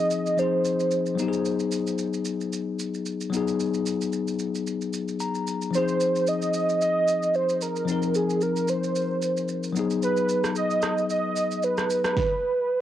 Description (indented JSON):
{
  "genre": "amapiano",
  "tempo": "112 BPM",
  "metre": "4/4",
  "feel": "swing 55% on 16ths",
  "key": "unclear",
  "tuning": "A4 = 440 Hz",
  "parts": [
    { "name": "warm velvety synth lead", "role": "melody", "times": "0.0-1.2, 5.7-12.8 s", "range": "Ab4 to Eb5", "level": "-24 LUFS", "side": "right 2 dB", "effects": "chorus, cassette tape, analog delay" },
    { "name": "bell-like tine electric piano", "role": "accompaniment", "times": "0.0-12.2 s", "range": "F3 to Bb5", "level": "-26 LUFS", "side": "left 5 dB", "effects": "auto-pan" },
    { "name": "deep house drum kit", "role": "drums", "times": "0.1-12.3 s", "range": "kick drum, rim click, shaker, snare drum", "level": "-33 LUFS", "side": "right 3 dB", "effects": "cassette tape" }
  ],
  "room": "little or no reverb",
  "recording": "home recording on cassette",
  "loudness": "-23 LUFS",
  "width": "side -11 dB against mid",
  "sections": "0.0-12.8 A section",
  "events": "tine electric piano fill 4.9-5.7",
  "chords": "0.0 Fm7; 1.2 Abm7; 5.7 Fm7; 9.8 Abm7"
}